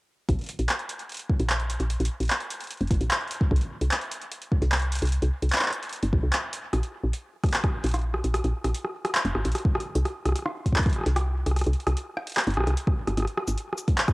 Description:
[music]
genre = IDM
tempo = 149 BPM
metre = 4/4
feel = straight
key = unclear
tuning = A4 = 440 Hz
[part]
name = woody FM bass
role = bass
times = 0.3-13.6 s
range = F1 to C2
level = -25 LUFS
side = equal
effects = none
[part]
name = booming analog drum machine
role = drums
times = 0.3-14.1 s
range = handclaps, hi-hat, rim click, shaker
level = -28 LUFS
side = equal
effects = cassette tape
[part]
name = electronic kick drum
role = drums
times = 0.3-14.1 s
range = none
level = -24 LUFS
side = equal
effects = cassette tape
[sound]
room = moderate spring reverb, RT60 1.9 s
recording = home recording on cassette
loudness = -24 LUFS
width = side -23 dB against mid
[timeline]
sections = 0.3-6.7 A section; 6.7-14.1 B section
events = break 6.3-6.7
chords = none

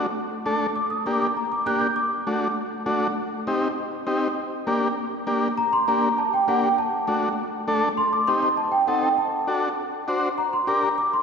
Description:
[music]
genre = latin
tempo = 200 BPM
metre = 4/4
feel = straight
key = G harmonic minor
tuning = A4 = 440 Hz
[part]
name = combo organ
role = accompaniment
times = 0.0-10.9 s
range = A3 to C5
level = -24 LUFS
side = left 1 dB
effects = none
[part]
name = large celesta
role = melody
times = 0.8-2.5, 5.6-11.2 s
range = F#5 to G6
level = -23 LUFS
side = right 1 dB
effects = none
[sound]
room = wet church reverb, RT60 3.2 s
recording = recorded in a church or concert hall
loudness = -21 LUFS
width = side -6 dB against mid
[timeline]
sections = 0.0-5.6 A section; 5.6-11.2 B section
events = none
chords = 0.0 D5; 0.8 Gm; 2.0 D; 3.2 Cm; 4.4 Gm; 6.8 D; 8.0 Cm; 9.2 D7; 10.4 Gm

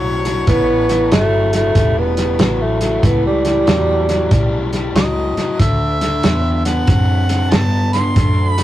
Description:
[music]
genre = electric blues shuffle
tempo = 94 BPM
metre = 4/4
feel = swing 65% on 8ths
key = A mixolydian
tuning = A4 = 441 Hz
[part]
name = clear harmonica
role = melody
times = 0.0-8.6 s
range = C#5 to C6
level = -22 LUFS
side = right 1 dB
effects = overdrive
[part]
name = overdriven electric guitar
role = riff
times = 0.0-8.6 s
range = A2 to C4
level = -20 LUFS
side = left 3 dB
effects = none
[part]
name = vintage muted fingered electric bass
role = bass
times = 0.0-8.6 s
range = E1 to G2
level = -19 LUFS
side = equal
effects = none
[part]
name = warm soul drum kit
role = drums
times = 0.3-8.6 s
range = hi-hat, kick drum, snare drum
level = -17 LUFS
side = equal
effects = none
[part]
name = growling tenor saxophone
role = second line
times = 0.5-4.8 s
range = G3 to B3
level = -17 LUFS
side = right 2 dB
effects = none
[sound]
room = moderate booth ambience, RT60 0.2 s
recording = rough rehearsal-room recording, warm saturation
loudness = -13 LUFS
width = side -14 dB against mid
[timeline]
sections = 0.0-8.6 A section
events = none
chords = 0.0 A7; 5.6 D7

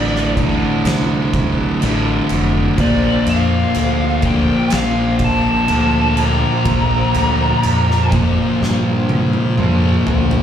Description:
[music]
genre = stoner and doom metal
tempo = 62 BPM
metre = 4/4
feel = straight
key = unclear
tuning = A4 = 441 Hz
[part]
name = fuzz lead guitar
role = melody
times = 0.0-8.1 s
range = D5 to Bb5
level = -21 LUFS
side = equal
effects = distortion, slapback echo, ping-pong delay
[part]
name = tonewheel organ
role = sustained chords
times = 0.0-10.4 s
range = D3 to C5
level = -26 LUFS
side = equal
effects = slow rotary speaker, overdrive
[part]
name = fuzz guitar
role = riff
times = 0.0-10.4 s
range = D2 to Bb3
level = -21 LUFS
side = right 6 dB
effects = distortion
[part]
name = thick fuzz guitar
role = riff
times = 0.0-10.4 s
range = D2 to Bb3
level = -19 LUFS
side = left 6 dB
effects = distortion
[part]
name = growling fingered electric bass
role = bass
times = 0.0-10.4 s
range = F1 to G2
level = -19 LUFS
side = equal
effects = overdrive
[part]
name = oversized low-tuned drum kit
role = drums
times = 0.2-10.4 s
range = crash cymbal, kick drum, snare drum, toms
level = -21 LUFS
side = right 1 dB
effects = none
[sound]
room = light reverb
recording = live gig heard through the venue's PA, club reverb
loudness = -13 LUFS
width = side -9 dB against mid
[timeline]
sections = 0.0-10.4 A section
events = drum fill 8.6-10.4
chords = 0.0 Dm; 2.8 Bb

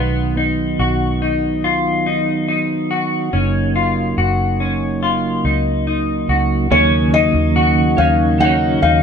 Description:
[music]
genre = dream pop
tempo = 71 BPM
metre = 4/4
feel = straight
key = unclear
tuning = A4 = 440 Hz
[part]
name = mellow tonewheel organ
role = sustained chords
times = 0.0-9.0 s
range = C#3 to D#4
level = -20 LUFS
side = right 3 dB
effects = slow rotary speaker
[part]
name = clean electric guitar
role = arpeggios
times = 0.0-9.0 s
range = B3 to F#4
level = -18 LUFS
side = left 4 dB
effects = lush chorus, ping-pong delay
[part]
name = vintage muted fingered electric bass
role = bass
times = 0.0-9.0 s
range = F#1 to D#2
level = -20 LUFS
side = equal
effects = none
[part]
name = felt-muted upright piano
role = melody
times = 6.7-9.0 s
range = C#5 to F#5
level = -18 LUFS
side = left 3 dB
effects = ping-pong delay
[part]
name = clean electric guitar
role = accompaniment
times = 6.7-9.0 s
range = D#3 to C#5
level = -21 LUFS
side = right 2 dB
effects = tremolo, analog chorus
[sound]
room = wet studio ambience, RT60 0.5 s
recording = none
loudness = -14 LUFS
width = side -7 dB against mid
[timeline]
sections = 0.0-6.7 A section; 6.7-9.0 B section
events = none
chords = 0.0 B; 3.3 F#6; 6.7 D#m7

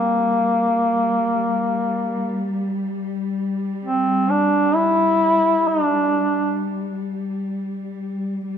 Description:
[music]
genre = caucasian folk, Caucasian lament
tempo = free time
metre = none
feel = none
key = G dorian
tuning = A4 = 439 Hz
[part]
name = warm duduk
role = melody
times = 0.0-6.6 s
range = Bb3 to E4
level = -18 LUFS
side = equal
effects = none
[part]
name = dark studio cello section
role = drone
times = 0.0-8.6 s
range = G3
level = -25 LUFS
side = left 2 dB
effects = none
[sound]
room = wet concert hall reverb, RT60 2.4 s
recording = dark, warm production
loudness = -18 LUFS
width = side -8 dB against mid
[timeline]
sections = 0.0-8.6 A section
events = none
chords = none

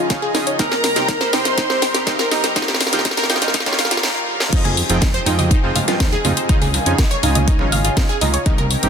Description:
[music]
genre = progressive house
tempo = 122 BPM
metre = 4/4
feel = straight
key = F minor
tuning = A4 = 441 Hz
[part]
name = lush unison pad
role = sustained chords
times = 0.0-8.9 s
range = C2 to Bb4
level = -25 LUFS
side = equal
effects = chorus, sidechain pumping
[part]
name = wide unison pluck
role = arpeggios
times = 0.0-8.6 s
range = Eb4 to F6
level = -23 LUFS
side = equal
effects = sidechain pumping, ping-pong delay
[part]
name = soft supersaw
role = stabs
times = 0.1-8.9 s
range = C3 to Ab5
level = -24 LUFS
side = right 3 dB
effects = sidechain pumping, ping-pong delay
[part]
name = electronic kick drum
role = drums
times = 0.1-8.6 s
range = none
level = -18 LUFS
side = equal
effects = none
[part]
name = house drum kit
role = drums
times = 0.1-8.9 s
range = crash cymbal, hi-hat, snare drum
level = -20 LUFS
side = left 1 dB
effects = sidechain pumping on hats, sidechain pumping on cymbals
[part]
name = wide unison lead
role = melody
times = 0.6-2.0 s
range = Bb4 to C5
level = -24 LUFS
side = equal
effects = sidechain pumping, ping-pong delay
[part]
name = rich studio violin section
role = second line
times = 0.6-2.0 s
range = Bb5 to C6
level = -26 LUFS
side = right 1 dB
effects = sidechain pumping, ping-pong delay
[part]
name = fat analog bass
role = bass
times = 4.5-8.9 s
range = F1 to F2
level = -21 LUFS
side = equal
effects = sidechain pumping
[part]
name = bongos and congas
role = percussion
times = 4.5-8.9 s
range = none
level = -25 LUFS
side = right 4 dB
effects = sidechain pumping on perc
[sound]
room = light reverb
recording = dense, heavily limited modern master, high-pass filter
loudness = -15 LUFS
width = side -7 dB against mid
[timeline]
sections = 0.0-4.5 A section; 4.5-8.9 B section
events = build-up 0.0-4.5; drum fill 0.0-4.0, 4.0-4.5; filter sweep on synth pluck 0.0-4.5; filter sweep 0.0-4.5; drop 4.5-8.9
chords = 0.0 Dbadd9; 0.6 Cm7; 2.6 Ebadd9; 4.5 Fm7; 6.5 Dbadd9

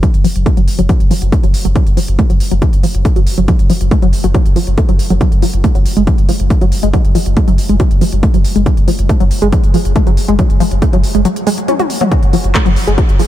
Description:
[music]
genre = driving peak-time techno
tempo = 139 BPM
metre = 4/4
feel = straight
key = F# harmonic minor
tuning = A4 = 441 Hz
[part]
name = tight sequenced synth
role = riff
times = 0.0-13.2 s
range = E#3 to F#4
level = -15 LUFS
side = equal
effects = chorus, tube saturation, cassette tape, sidechain pumping, ping-pong delay
[part]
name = saturated sub bass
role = bass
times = 0.0-13.2 s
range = F#1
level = -16 LUFS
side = equal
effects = tube saturation, sidechain pumping, low-pass filter
[part]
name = electronic kick drum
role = drums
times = 0.0-13.1 s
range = none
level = -12 LUFS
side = equal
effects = none
[part]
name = techno drum kit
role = drums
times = 0.0-13.3 s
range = handclaps, hi-hat, toms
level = -23 LUFS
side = equal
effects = sidechain pumping on hats, sidechain pumping on toms
[sound]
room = light reverb, digital ambience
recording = none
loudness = -10 LUFS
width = side -13 dB against mid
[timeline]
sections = 0.0-13.3 A section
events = filter sweep on synth arpeggio sound 0.0-13.3; break 11.3-12.1; drum fill 11.7-12.1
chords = none

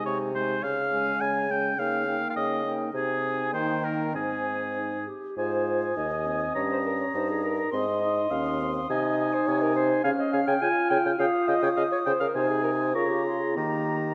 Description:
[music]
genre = quick classical-period movement for wind quintet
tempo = 103 BPM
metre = 2/4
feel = straight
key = Ab major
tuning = A4 = 440 Hz
[part]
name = mellow concert flute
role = melody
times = 0.0-14.1 s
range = G5 to F6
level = -37 LUFS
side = equal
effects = none
[part]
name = warm oboe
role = second line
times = 0.0-14.1 s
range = Ab4 to C6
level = -33 LUFS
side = equal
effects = none
[part]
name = mellow French horn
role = accompaniment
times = 0.0-14.1 s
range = Ab3 to F4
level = -33 LUFS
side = equal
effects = none
[part]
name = mellow clarinet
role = accompaniment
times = 0.0-14.1 s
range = Db4 to Ab5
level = -33 LUFS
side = equal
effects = none
[part]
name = mellow bassoon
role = bass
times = 0.1-14.1 s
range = Eb2 to Eb3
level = -32 LUFS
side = equal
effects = none
[sound]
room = moderate scoring stage reverb, RT60 1.8 s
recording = none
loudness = -26 LUFS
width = mono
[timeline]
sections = 0.0-5.4 A section; 5.4-14.1 B section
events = none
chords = 0.0 Ab/C; 0.6 Db; 1.8 Eb7/Db; 2.9 Ab/C; 3.5 Eb; 4.1 Ab; 6.6 Eb7/G; 7.7 Ab; 8.9 Ab/C; 10.0 Db; 11.2 Eb7(no3)/Db; 12.4 Ab/C; 12.9 Bbm7/Db; 13.6 Eb

